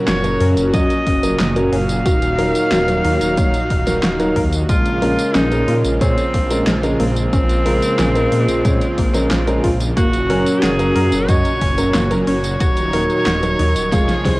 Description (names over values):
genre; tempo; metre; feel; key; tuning
synthwave; 91 BPM; 4/4; straight; Bb minor; A4 = 440 Hz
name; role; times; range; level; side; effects
brassy analog pad; sustained chords; 0.0-14.4 s; Bb2 to Ab4; -23 LUFS; equal; chorus, sidechain pumping, cassette tape
dark grand piano; stabs; 0.0-14.4 s; Db3 to F5; -20 LUFS; equal; cassette tape, plate reverb
edgy alto saxophone; melody; 0.1-14.4 s; C4 to F5; -22 LUFS; equal; cassette tape, tape echo
analog pluck; arpeggios; 0.1-14.4 s; Ab3 to Bb4; -26 LUFS; left 1 dB; chorus, cassette tape, tape echo, plate reverb
dark detuned saw bass; bass; 0.1-14.4 s; Eb1 to Bb2; -21 LUFS; equal; sidechain pumping
pop drum kit; drums; 0.1-14.4 s; handclaps, hi-hat, snare drum, tambourine; -24 LUFS; equal; overdrive, cassette tape
electronic kick drum; drums; 0.7-14.4 s; none; -18 LUFS; equal; cassette tape
room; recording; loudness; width
moderate studio reverb, RT60 0.5 s; home recording on cassette; -14 LUFS; side -21 dB against mid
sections
0.0-14.4 A section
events
drum fill 13.9-14.4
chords
0.0 Gb; 2.1 Ebm; 4.7 Bbm7; 10.0 Gb; 12.6 Ebm